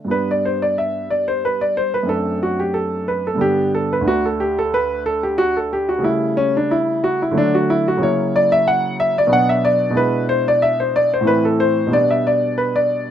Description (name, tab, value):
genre	classical, baroque-style suite movement for grand piano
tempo	91 BPM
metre	3/4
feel	rubato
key	G major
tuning	A4 = 440 Hz
part	warm grand piano	solo	0.0-13.1 s	D2 to F#5	-16 LUFS	equal	none
room	light reverb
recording	close, detailed microphones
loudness	-16 LUFS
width	side -10 dB against mid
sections	0.1-13.1 A section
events	none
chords	0.1 G; 2.1 D7/F#; 3.4 G; 4.1 D5; 6.1 A7/C#; 7.4 D; 8.0 F#7/C#; 9.3 Bm; 10.0 E7/B; 11.3 Am; 11.9 G/B